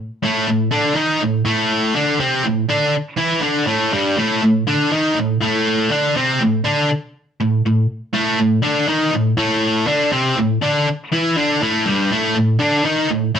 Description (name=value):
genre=rock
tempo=121 BPM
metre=4/4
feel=straight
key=A minor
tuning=A4 = 440 Hz
part: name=distorted electric guitar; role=solo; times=0.2-13.4 s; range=G2 to E4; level=-15 LUFS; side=equal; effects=overdrive
room=moderate studio reverb, RT60 0.6 s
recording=band playing live in one room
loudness=-15 LUFS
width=side -8 dB against mid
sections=0.0-12.1 A section; 12.1-13.4 A section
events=none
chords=0.0 Am; 12.1 N.C.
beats=| 0.24 0.74 1.23 1.72 | 2.22 2.71 3.20 3.70 | 4.19 4.69 5.18 5.68 | 6.17 6.67 7.16 7.66 | 8.15 8.65 9.14 9.64 | 10.14 10.63 11.13 11.62 | 12.12 12.62 13.11